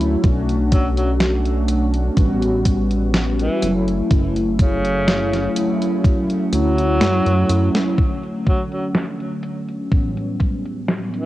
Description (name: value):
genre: vaporwave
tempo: 62 BPM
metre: 4/4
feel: straight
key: unclear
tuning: A4 = 444 Hz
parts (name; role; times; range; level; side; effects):
- mellow synth brass; accompaniment; 0.0-11.3 s; A2 to F#4; -21 LUFS; equal; wide subtle chorus, cassette tape, analog delay
- chorused synth bass; bass; 0.0-7.7 s; F#1 to F#2; -21 LUFS; equal; none
- detuned 8-bit digital drum machine; drums; 0.0-11.3 s; hi-hat, snare drum; -22 LUFS; equal; low-pass filter on hats, studio reverb, low-pass filter on snare
- electronic kick drum; drums; 0.2-10.6 s; none; -17 LUFS; equal; studio reverb
- warm tenor saxophone; melody; 0.7-11.3 s; C#3 to F#3; -24 LUFS; equal; tape echo
room: little or no reverb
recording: home recording on cassette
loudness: -16 LUFS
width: side -15 dB against mid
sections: 0.0-8.0 A section; 8.0-11.3 B section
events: drum fill 7.0-8.0; band accent 7.7-8.2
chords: 0.2 Bm9; 2.2 A13; 3.6 F#m7; 5.6 Dmaj9; 8.0 Dmaj7; 9.9 A13